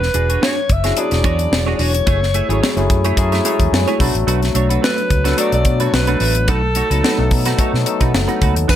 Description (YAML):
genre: polished 1980s jazz-funk pop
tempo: 109 BPM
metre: 4/4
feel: swing 54% on 16ths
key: unclear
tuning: A4 = 441 Hz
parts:
  - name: breathy alto saxophone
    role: melody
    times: 0.0-8.8 s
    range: A4 to E5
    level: -21 LUFS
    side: left 1 dB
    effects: digital delay
  - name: clean electric guitar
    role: riff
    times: 0.0-8.8 s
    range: A3 to E5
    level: -23 LUFS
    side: right 7 dB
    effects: analog chorus
  - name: vintage muted fingered electric bass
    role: bass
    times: 0.0-8.8 s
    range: E1 to B2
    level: -18 LUFS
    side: equal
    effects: none
  - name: crisp fusion drum kit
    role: drums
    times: 0.0-8.8 s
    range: crash cymbal, hi-hat, kick drum, snare drum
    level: -19 LUFS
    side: equal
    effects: none
  - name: barky tine electric piano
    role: accompaniment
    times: 0.8-8.8 s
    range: E3 to A5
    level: -20 LUFS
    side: left 4 dB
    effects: overdrive, lush chorus
  - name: tambourine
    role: percussion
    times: 8.7-8.8 s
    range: none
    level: -24 LUFS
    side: left 8 dB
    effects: none
room: light reverb, small room ambience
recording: none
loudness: -14 LUFS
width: side -11 dB against mid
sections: 0.0-8.7 A section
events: tine electric piano fill 7.9-8.7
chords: 0.0 E13; 2.1 F#m9; 4.0 Bm7; 6.5 B7